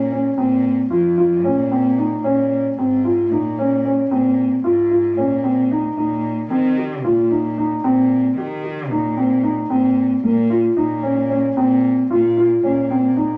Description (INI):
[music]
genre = contemporary instrumental, chamber music in an uneven meter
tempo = 225 BPM (eighths)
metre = 7/8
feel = straight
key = unclear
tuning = A4 = 435 Hz
[part]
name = dark grand piano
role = arpeggios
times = 0.0-13.4 s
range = Bb3 to G4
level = -18 LUFS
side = equal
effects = none
[part]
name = warm cello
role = bass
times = 0.0-13.4 s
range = F2 to Eb3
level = -27 LUFS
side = equal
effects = none
[sound]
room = wet studio reverb, RT60 0.9 s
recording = none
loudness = -18 LUFS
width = mono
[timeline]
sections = 0.0-13.4 A section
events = none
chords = 0.0 Bbmadd9; 2.2 Dbmaj7; 6.0 Eb6/Bb; 9.7 Ebsus2/Bb (rootless)